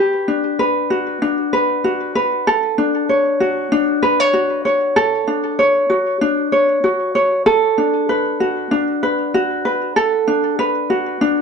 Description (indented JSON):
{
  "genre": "folktronica",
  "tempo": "96 BPM",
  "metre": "4/4",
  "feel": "swing 56% on 16ths",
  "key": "D major",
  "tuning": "A4 = 440 Hz",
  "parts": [
    { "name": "ukulele", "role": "solo", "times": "0.0-11.4 s", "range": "D4 to C#5", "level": "-15 LUFS", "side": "equal", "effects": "vintage 12-bit sampler grit, ping-pong delay" }
  ],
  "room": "moderate studio reverb, RT60 0.6 s",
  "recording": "nothing above 10.5 kHz",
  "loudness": "-15 LUFS",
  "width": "side -5 dB against mid",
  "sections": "0.0-11.4 A section",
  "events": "none",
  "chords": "0.0 Gmaj7; 2.5 Dmaj7; 7.5 Bm7",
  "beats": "0.59 1.22 1.84 | 2.46 3.09 3.71 4.34 | 4.96 5.59 6.21 6.84 | 7.46 8.09 8.71 9.34 | 9.96 10.59 11.21"
}